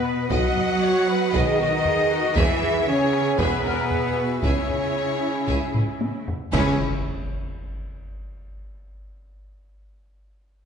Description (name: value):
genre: cinematic, epic orchestral film score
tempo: 116 BPM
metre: 4/4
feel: straight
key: C# minor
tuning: A4 = 440 Hz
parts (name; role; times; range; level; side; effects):
- warm symphonic violin section; melody; 0.0-6.8 s; B4 to F#5; -31 LUFS; left 5 dB; none
- concert flute; second line; 0.0-6.8 s; B4 to F#5; -30 LUFS; left 2 dB; none
- warm symphonic viola section; accompaniment; 0.0-6.8 s; E4 to D#5; -29 LUFS; right 3 dB; none
- clear woodwind section; sustained chords; 0.0-6.7 s; G#3 to G#5; -32 LUFS; right 1 dB; none
- dark French horn section; sustained chords; 0.0-6.8 s; B3 to F#4; -26 LUFS; left 2 dB; none
- rich symphonic cello section; bass; 0.0-6.8 s; B2 to C#4; -28 LUFS; right 4 dB; none
- taiko ensemble; drums; 0.0-6.7 s; none; -27 LUFS; equal; none
- rich symphonic violin section; second line; 0.3-6.8 s; B3 to E5; -34 LUFS; left 2 dB; none
- clear tuba; bass; 0.3-6.8 s; E1 to C#2; -31 LUFS; right 4 dB; none
- rich symphonic double bass section; bass; 0.3-6.8 s; B1 to E2; -30 LUFS; right 3 dB; none
- clash cymbals and concert bass drum; percussion; 6.5-7.5 s; none; -33 LUFS; equal; none
- timpani; percussion; 6.5-6.8 s; C#3; -32 LUFS; left 3 dB; none
- impact; sound effects; 6.7-8.6 s; none; -38 LUFS; equal; none
room: wet scoring stage reverb, RT60 1.5 s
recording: nothing above 10.9 kHz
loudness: -20 LUFS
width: side -7 dB against mid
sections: 0.0-6.5 A section; 6.5-8.6 B section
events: drum fill 5.7-6.5; band accent 6.5-7.1; impact 6.5-8.6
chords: 0.0 B; 2.4 E; 4.4 C#m